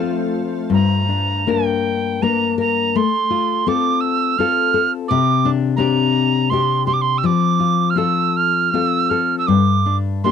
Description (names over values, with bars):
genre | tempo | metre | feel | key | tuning
celtic folk, Celtic slow air | 82 BPM | 3/4 | uneven beats, rubato | G dorian | A4 = 440 Hz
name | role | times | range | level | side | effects
nylon-string guitar | accompaniment | 0.0-10.3 s | G2 to Bb4 | -18 LUFS | left 6 dB | none
soft additive organ-like pad | sustained chords | 0.0-0.7 s | A3 to C5 | -29 LUFS | right 3 dB | ensemble chorus, built-in reverb
wooden whistle | melody | 0.7-10.3 s | G5 to F6 | -18 LUFS | right 7 dB | none
room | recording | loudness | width
little or no reverb | dry, close 1970s-style studio recording | -15 LUFS | side -7 dB against mid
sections
0.7-10.3 A section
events
none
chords
0.0 F; 0.7 Gm; 2.9 F/A; 5.1 Csus2; 7.2 F; 9.5 G5